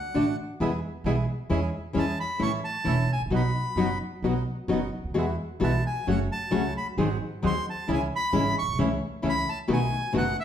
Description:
tango; 133 BPM; 4/4; rubato; E major; A4 = 440 Hz
bandoneon; melody; 0.0-10.4 s; E5 to C#6; -30 LUFS; equal
nylon-string guitar; accompaniment; 0.1-10.2 s; B2 to G#4; -27 LUFS; left 2 dB
upright bass; bass; 0.1-10.3 s; E1 to E2; -30 LUFS; right 2 dB
bandoneon; stabs; 0.2-10.3 s; G#3 to A4; -36 LUFS; right 3 dB
wet large studio reverb, RT60 1.2 s; heard from further back in the room; -24 LUFS; side -9 dB against mid
0.0-10.4 A section
0.0 D; 0.6 E; 1.5 C#m/E; 2.4 A; 3.3 B; 5.2 Eadd9; 6.1 F#m; 7.0 G#7; 7.9 C#m; 8.8 A/C#; 9.7 B7
0.16 0.61 1.06 | 1.51 1.96 2.41 2.87 | 3.32 3.78 4.24 4.70 | 5.17 5.63 6.08 6.54 | 6.99 7.44 7.89 8.34 | 8.79 9.24 9.69 10.14

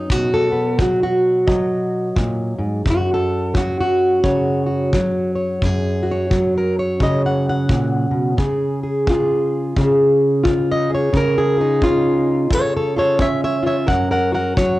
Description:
acoustic country blues, solo or duo; 87 BPM; 4/4; swing 61% on 8ths; F# major; A4 = 440 Hz
fingerpicked plugged-in steel-string acoustic guitar; melody; 0.0-14.8 s; F#2 to F#5; -16 LUFS; equal; cassette tape
kick drum; drums; 0.1-14.8 s; -22 LUFS; equal; cassette tape
moderate small room reverb, RT60 0.5 s; home recording on cassette; -16 LUFS; side -17 dB against mid
0.0-14.8 A section
0.0 B; 2.9 F#5; 8.4 C#; 13.9 F#
| 0.10 0.79 1.48 2.16 | 2.85 3.54 4.23 4.92 | 5.61 6.30 6.99 7.68 | 8.37 9.06 9.75 10.44 | 11.13 11.82 12.51 13.20 | 13.88 14.57

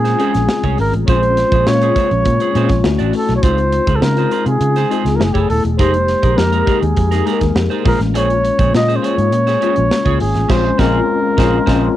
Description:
polished 1980s jazz-funk pop; 102 BPM; 4/4; straight; Bb dorian; A4 = 440 Hz
breathy flugelhorn; melody; 0.0-12.0 s; G4 to Eb5; -18 LUFS; right 1 dB; plate reverb
mellow tine electric piano; accompaniment; 0.0-12.0 s; Ab3 to Bb4; -18 LUFS; left 7 dB; medium stereo tremolo, ensemble chorus, cassette tape
clean electric guitar; riff; 0.0-11.9 s; Db4 to D5; -24 LUFS; right 9 dB; wide subtle chorus, cassette tape
vintage muted fingered electric bass; bass; 0.0-11.9 s; Eb1 to Db3; -17 LUFS; right 1 dB
modern studio drum kit; drums; 0.1-11.8 s; crash cymbal, hi-hat, kick drum, snare drum; -19 LUFS; right 1 dB
light reverb; home recording on cassette; -12 LUFS; side -13 dB against mid
0.0-12.0 A section
band accent 10.5-12.0
0.0 Bbm9; 2.8 Dmaj7; 3.4 Dbmaj7; 5.2 Gbm11; 5.8 Fm11; 7.9 Bbm9
0.49 | 1.08 1.67 2.26 2.85 | 3.44 4.03 4.62 5.20 | 5.79 6.38 6.97 7.56 | 8.15 8.73 9.32 9.91 | 10.50 11.09 11.68

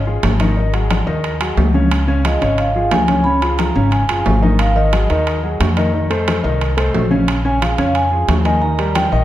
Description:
Afro-Cuban jazz; 179 BPM; 4/4; straight; A4 = 440 Hz
upright bass; bass; 0.0-9.2 s; Gb1 to F2; -18 LUFS; equal
warm concert grand piano; accompaniment; 0.1-9.2 s; Db3 to Eb5; -20 LUFS; left 1 dB
congas; percussion; 0.1-9.2 s; -22 LUFS; left 3 dB
timbales; percussion; 0.2-9.1 s; -22 LUFS; right 3 dB
vibraphone with soft mallets; melody; 2.3-5.2, 7.5-9.2 s; Eb5 to Cb6; -19 LUFS; right 1 dB; slapback echo
wet large studio reverb, RT60 1.4 s; -13 LUFS; side -13 dB against mid
0.0-9.2 A section
0.0 Dbadd9 (rootless); 0.6 Ab5; 1.9 Dbadd9; 4.6 Ab5; 5.9 F7; 7.3 Bbm7; 8.6 Eb
0.23 | 0.57 0.90 1.24 1.57 | 1.91 2.25 2.58 2.92 | 3.25 3.59 3.92 4.26 | 4.60 4.93 5.27 5.60 | 5.94 6.28 6.61 6.95 | 7.28 7.62 7.95 8.29 | 8.62 8.96

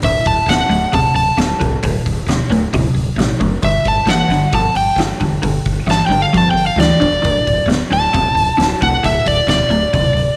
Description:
blues rock power trio and southern rock; 133 BPM; 4/4; straight; D mixolydian; A4 = 440 Hz
overdriven slide guitar; melody; 0.0-10.4 s; D5 to A5; -18 LUFS; equal
crunchy overdriven guitar; riff; 0.0-10.3 s; D2 to F3; -20 LUFS; equal; phaser
woody fretless electric bass; bass; 0.0-10.3 s; D1 to D2; -24 LUFS; equal
oversized low-tuned drum kit; drums; 0.0-10.3 s; hi-hat, kick drum, snare drum; -23 LUFS; equal
moderate plate reverb, RT60 2.3 s; -15 LUFS; mono
0.0-10.4 A section
0.0 D5; 3.6 G5; 7.2 D5
| 0.03 0.48 0.93 1.38 | 1.83 2.28 2.73 3.18 | 3.63 4.08 4.53 4.98 | 5.43 5.88 6.33 6.78 | 7.23 7.68 8.13 8.58 | 9.03 9.48 9.93

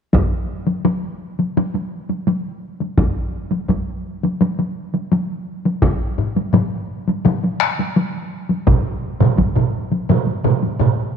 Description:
japanese traditional, taiko drum ensemble; 84 BPM; 4/4; straight
taiko ensemble; percussion; 0.1-10.8 s; -20 LUFS; left 1 dB
taiko ensemble; percussion; 0.1-9.5 s; -19 LUFS; equal
taiko ensemble; percussion; 6.2-11.0 s; -21 LUFS; left 6 dB
taiko ensemble; percussion; 8.7-11.0 s; -18 LUFS; right 8 dB
wet echo chamber reverb, RT60 2.3 s; 1960s-style stereo with parts hard left and right; -17 LUFS; side -7 dB against mid
0.1-11.2 A section
| 0.13 0.84 1.55 2.27 | 2.98 3.70 4.41 5.12 | 5.83 6.54 7.25 7.96 | 8.67 9.38 10.09 10.80

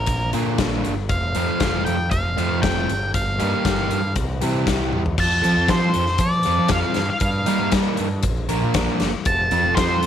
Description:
indie rock; 117 BPM; 4/4; straight; F major; A4 = 438 Hz
octave-fuzz lead guitar; melody; 0.0-10.1 s; Bb4 to A5; -22 LUFS; equal; distortion, slapback echo
growling picked electric bass; bass; 0.0-10.1 s; F1 to G3; -23 LUFS; right 1 dB; overdrive
big rock drum kit; drums; 0.1-10.1 s; crash cymbal, hi-hat, kick drum, snare drum, toms; -24 LUFS; left 3 dB
fuzz guitar; riff; 0.3-10.1 s; D3 to Bb4; -24 LUFS; right 1 dB; distortion
small room ambience; 1960s-style stereo; -18 LUFS; side -9 dB against mid
0.0-5.2 A section; 5.2-10.1 B section
drum fill 4.9
0.1 Bb; 1.1 F; 2.9 Ebadd9/G; 4.2 C; 5.2 F6; 7.0 Ebadd9/G; 8.3 Bb; 9.3 F
0.08 0.59 | 1.10 1.61 2.12 2.63 | 3.14 3.65 4.16 4.67 | 5.18 5.69 6.21 6.72 | 7.23 7.74 8.25 8.76 | 9.28 9.79

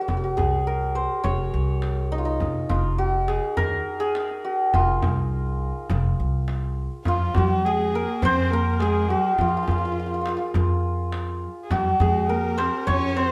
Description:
Persian modal ensemble; 103 BPM; 4/4; straight; F dastgah shur; A4 = 440 Hz
santur; melody; 0.0-13.3 s; Eb4 to Db5; -27 LUFS; equal
upright bass; bass; 0.1-13.3 s; F1 to F3; -28 LUFS; equal
tombak; percussion; 0.1-13.0 s; -31 LUFS; equal
warm cello; second line; 7.1-13.3 s; F3 to Db4; -32 LUFS; equal
warm kamancheh; second line; 7.1-13.3 s; F4 to Db5; -33 LUFS; equal
light reverb; -23 LUFS; mono
0.0-7.1 A section; 7.1-13.3 B section
| 0.08 0.67 1.25 1.83 | 2.41 2.99 3.57 4.15 | 4.73 5.31 5.89 6.48 | 7.06 7.64 8.22 8.80 | 9.38 9.96 10.54 11.12 | 11.71 12.29 12.87

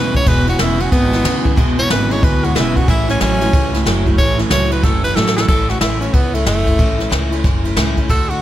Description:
rockabilly; 184 BPM; 4/4; swing 63% on 8ths; A major; A4 = 441 Hz
clear tenor saxophone; melody; 0.0-8.4 s; A3 to C#5; -20 LUFS; equal; tape echo
picked steel-string acoustic guitar; accompaniment; 0.0-8.4 s; E2 to F#4; -22 LUFS; left 3 dB
electric guitar through a small old amp; riff; 0.0-5.5 s; E2 to F#3; -21 LUFS; right 4 dB; spring reverb
upright bass; bass; 0.0-8.4 s; E1 to D2; -19 LUFS; equal
jazz brush drum kit; drums; 0.1-8.4 s; crash cymbal, kick drum, ride cymbal, snare drum; -16 LUFS; equal
small room ambience; -13 LUFS; side -12 dB against mid
0.0-5.5 A section; 5.5-8.4 A section
drum fill 5.2-5.5
0.0 E; 2.9 A
| 0.27 0.59 0.92 1.25 | 1.57 1.90 2.23 2.55 | 2.88 3.21 3.53 3.86 | 4.18 4.51 4.83 5.16 | 5.49 5.81 6.14 6.46 | 6.79 7.12 7.44 7.77 | 8.10

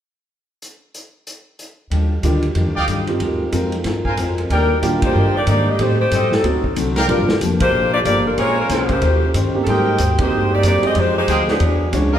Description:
jazz, big band swing; 186 BPM; 4/4; swing 61% on 8ths; Eb major; A4 = 439 Hz
vintage drum kit; drums; 0.6-12.0 s; hi-hat, kick drum, ride cymbal, snare drum; -25 LUFS; right 1 dB
picked steel-string acoustic guitar; accompaniment; 1.9-12.2 s; G2 to C#5; -23 LUFS; left 3 dB
upright bass; bass; 1.9-12.2 s; F1 to Bb2; -20 LUFS; equal
warm baby grand piano; accompaniment; 2.2-7.3, 9.5-12.1 s; G3 to Bb4; -23 LUFS; right 3 dB
bright trumpet section; stabs; 2.8-12.2 s; Ab4 to Ab5; -23 LUFS; right 1 dB
bright saxophone section; melody; 4.5-11.9 s; Gb3 to Eb5; -19 LUFS; left 1 dB
wet large studio reverb, RT60 1.3 s; heard from further back in the room; -15 LUFS; side -10 dB against mid
0.6-1.9 A section; 1.9-4.5 B section; 4.5-12.2 C section
band accent 5.0, 7.6, 10.2
0.6 N.C.; 1.9 Ebmaj9; 3.2 Ab69; 4.5 Ebmaj7; 5.8 Am7b5; 6.4 D7b9; 7.1 Gm7; 8.4 Bbm9; 9.0 Eb13; 9.7 Abmaj7; 11.0 Fm9; 11.6 E13
| 0.61 0.94 1.26 1.58 | 1.91 2.23 2.56 2.88 | 3.20 3.53 3.85 4.17 | 4.50 4.82 5.15 5.47 | 5.79 6.12 6.44 6.76 | 7.09 7.41 7.73 8.05 | 8.38 8.70 9.03 9.35 | 9.67 9.99 10.32 10.64 | 10.96 11.29 11.61 11.93

